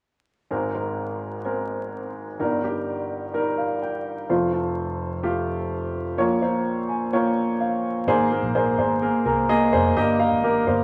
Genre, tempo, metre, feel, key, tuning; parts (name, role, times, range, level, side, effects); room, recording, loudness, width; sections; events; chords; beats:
pop; 127 BPM; 4/4; straight; Ab major; A4 = 440 Hz
warm upright piano; accompaniment; 0.5-10.8 s; F1 to Ab5; -24 LUFS; equal
vintage muted fingered electric bass; bass; 8.1-10.8 s; F1 to C2; -32 LUFS; equal
wet studio reverb, RT60 0.6 s; vinyl crackle; -24 LUFS; mono
0.5-8.1 A section; 8.1-10.8 B section
upright piano fill 3.3-4.3, 6.7-8.1
0.5 Abadd9; 2.4 Eb/G; 4.3 F; 6.2 Bbm; 8.1 Abadd9; 10.0 Eb/G
| 0.51 0.98 1.45 1.93 | 2.40 2.87 3.34 3.81 | 4.29 4.76 5.23 5.71 | 6.18 6.65 7.12 7.59 | 8.07 8.54 9.01 9.48 | 9.96 10.43